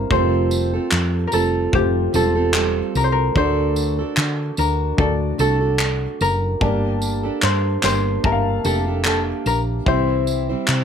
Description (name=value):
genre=acoustic pop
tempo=74 BPM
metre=4/4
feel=swing 55% on 16ths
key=unclear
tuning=A4 = 440 Hz
part: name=concert harp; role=melody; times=0.0-10.8 s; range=G4 to C5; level=-22 LUFS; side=left 1 dB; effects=none
part: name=dark upright piano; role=accompaniment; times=0.0-10.8 s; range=G3 to A5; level=-27 LUFS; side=left 6 dB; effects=none
part: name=fingerpicked plugged-in steel-string acoustic guitar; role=accompaniment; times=0.0-10.8 s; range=C3 to C5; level=-24 LUFS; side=right 5 dB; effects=none
part: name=woody fretless electric bass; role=bass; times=0.0-10.8 s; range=E1 to D3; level=-22 LUFS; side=equal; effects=none
part: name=modern studio drum kit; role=drums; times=0.1-10.8 s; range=handclaps, kick drum, tambourine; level=-24 LUFS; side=equal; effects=none
room=little or no reverb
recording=close, detailed microphones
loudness=-17 LUFS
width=side -7 dB against mid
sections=0.0-10.8 A section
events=none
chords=0.1 Fadd9; 3.4 D; 6.6 Gmadd9; 9.9 C